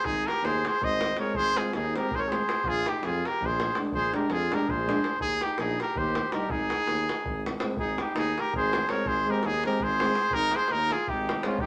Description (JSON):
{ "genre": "balkan folk, Balkan brass band", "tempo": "327 BPM (eighths)", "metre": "7/8", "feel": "straight", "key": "Ab major", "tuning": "A4 = 440 Hz", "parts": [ { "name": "clear trumpet", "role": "melody", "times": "0.0-11.7 s", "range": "F4 to Eb5", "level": "-30 LUFS", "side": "equal", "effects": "none" }, { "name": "clear flugelhorn", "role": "second line", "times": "0.0-11.7 s", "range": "Db4 to C5", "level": "-36 LUFS", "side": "equal", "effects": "none" }, { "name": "mellow tuba", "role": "bass", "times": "0.0-11.7 s", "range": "Ab1 to F2", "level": "-37 LUFS", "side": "equal", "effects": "none" }, { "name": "davul", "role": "percussion", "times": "0.0-11.7 s", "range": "none", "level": "-37 LUFS", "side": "equal", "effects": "none" }, { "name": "mellow euphonium", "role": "accompaniment", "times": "1.2-11.6 s", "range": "G3 to Ab3", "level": "-37 LUFS", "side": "equal", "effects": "none" }, { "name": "warm French horn", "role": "accompaniment", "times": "1.2-11.6 s", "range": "C4 to Eb4", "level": "-36 LUFS", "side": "equal", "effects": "none" } ], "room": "wet studio reverb, RT60 0.9 s", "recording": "none", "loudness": "-27 LUFS", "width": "mono", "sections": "0.0-7.8 A section; 7.8-11.7 A section", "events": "none", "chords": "0.0 Ab; 2.6 Bb7; 5.2 Eb; 6.5 Ab5; 7.8 Ab", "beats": "| 0.05 0.23 0.42 0.60 0.79 0.97 1.16 | 1.34 1.52 1.71 1.89 2.08 2.26 2.44 | 2.63 2.81 2.99 3.18 3.36 3.54 3.73 | 3.91 4.10 4.28 4.46 4.65 4.83 5.01 | 5.20 5.38 5.56 5.75 5.93 6.11 6.30 | 6.48 6.66 6.85 7.03 7.21 7.39 7.58 | 7.76 7.94 8.13 8.31 8.49 8.68 8.86 | 9.04 9.22 9.40 9.59 9.77 9.95 10.14 | 10.32 10.50 10.68 10.87 11.05 11.23 11.41 | 11.60" }